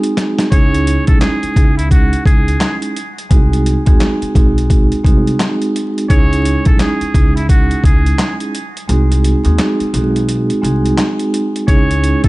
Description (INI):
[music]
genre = hip hop, boom-bap hip-hop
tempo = 86 BPM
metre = 4/4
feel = swing 62% on 16ths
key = C# harmonic minor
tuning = A4 = 440 Hz
[part]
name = vibraphone with medium mallets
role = accompaniment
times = 0.0-12.3 s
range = G#3 to G#4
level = -17 LUFS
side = right 2 dB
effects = high-pass filter, low-pass filter
[part]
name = boom bap sampler-style drum kit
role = drums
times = 0.0-12.3 s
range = handclaps, hi-hat, kick drum, snare drum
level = -13 LUFS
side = equal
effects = none
[part]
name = trumpet with metal mute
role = melody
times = 0.5-12.3 s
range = E4 to C#5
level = -22 LUFS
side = equal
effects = high-pass filter, low-pass filter, tape echo
[part]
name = upright bass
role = bass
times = 0.5-12.3 s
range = B1 to D#2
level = -15 LUFS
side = equal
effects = none
[sound]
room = studio reverb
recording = dark, warm production, vinyl crackle, nothing above 10.8 kHz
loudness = -11 LUFS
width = side -20 dB against mid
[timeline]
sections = 0.5-12.3 A section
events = drum fill 0.0-0.5; kick muted 8.9-11.7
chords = 0.0 G#7; 0.5 C#madd9; 3.3 G#7; 6.1 C#madd9; 8.9 G#7; 11.7 C#madd9